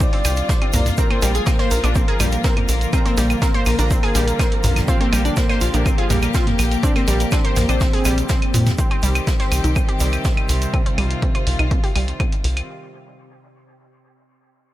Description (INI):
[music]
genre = melodic techno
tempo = 123 BPM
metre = 4/4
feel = straight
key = C minor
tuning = A4 = 440 Hz
[part]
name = wide unison lead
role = melody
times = 0.0-8.7 s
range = Bb3 to D5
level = -25 LUFS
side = equal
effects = sidechain pumping, dub echo
[part]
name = glassy wavetable pluck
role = second line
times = 0.0-8.7 s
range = Bb4 to D6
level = -32 LUFS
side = left 3 dB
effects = chorus, sidechain pumping, dub echo
[part]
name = rich chamber string section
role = sustained chords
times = 0.0-12.7 s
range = C3 to G4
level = -27 LUFS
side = left 1 dB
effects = vintage 12-bit sampler grit, sidechain pumping
[part]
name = wide unison pluck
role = arpeggios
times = 0.0-12.3 s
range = G3 to C6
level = -26 LUFS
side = right 1 dB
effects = cassette tape, sidechain pumping, dub echo
[part]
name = tight sequencer bass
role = bass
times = 0.0-12.6 s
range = Bb1 to Bb2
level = -19 LUFS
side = equal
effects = sidechain pumping
[part]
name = electronic kick drum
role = drums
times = 0.0-12.3 s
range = none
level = -20 LUFS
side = equal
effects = none
[part]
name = punchy analog drum machine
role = drums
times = 0.0-12.7 s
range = claves, hi-hat, toms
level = -26 LUFS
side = right 1 dB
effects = none
[part]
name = vintage brush drum kit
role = drums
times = 0.0-10.6 s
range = hi-hat, shaker, snare drum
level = -32 LUFS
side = right 1 dB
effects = high-pass filter on hats, high-pass filter on snare, high-pass filter on perc, high-pass filter on room
[part]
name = egg shaker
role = percussion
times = 0.0-10.7 s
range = none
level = -33 LUFS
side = right 6 dB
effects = none
[part]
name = overtone-sweeping drone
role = drone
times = 9.9-12.7 s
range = C3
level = -35 LUFS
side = equal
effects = chorus, built-in reverb, sidechain pumping
[sound]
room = small room ambience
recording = none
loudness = -16 LUFS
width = side -14 dB against mid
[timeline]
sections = 0.0-8.8 A section; 8.8-12.7 B section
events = drop 0.0-8.8; filter sweep on analog synth bass 8.8-12.7; filter sweep on synth arpeggio sound 8.8-12.7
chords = 0.0 Cm; 1.0 Bb; 8.8 Cm